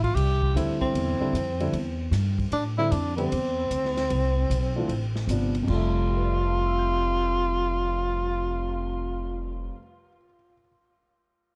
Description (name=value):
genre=modal jazz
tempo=152 BPM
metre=4/4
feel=swing 66% on 8ths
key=F lydian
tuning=A4 = 440 Hz
part: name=breathy tenor saxophone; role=melody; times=0.0-9.6 s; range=C4 to G4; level=-30 LUFS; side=equal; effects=tape echo
part: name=upright bass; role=bass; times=0.0-9.7 s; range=F1 to A2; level=-30 LUFS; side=equal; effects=none
part: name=swinging big-band drum kit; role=drums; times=0.0-8.8 s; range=crash cymbal, cymbal swell, hi-hat, kick drum, ride cymbal, snare drum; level=-40 LUFS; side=equal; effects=none
part: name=warm grand piano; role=accompaniment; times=0.6-10.7 s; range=F2 to G6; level=-33 LUFS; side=equal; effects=none
room=light reverb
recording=cassette tape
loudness=-26 LUFS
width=mono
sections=0.0-5.7 A section; 5.7-8.8 B section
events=none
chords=0.0 Am; 5.7 Fmaj9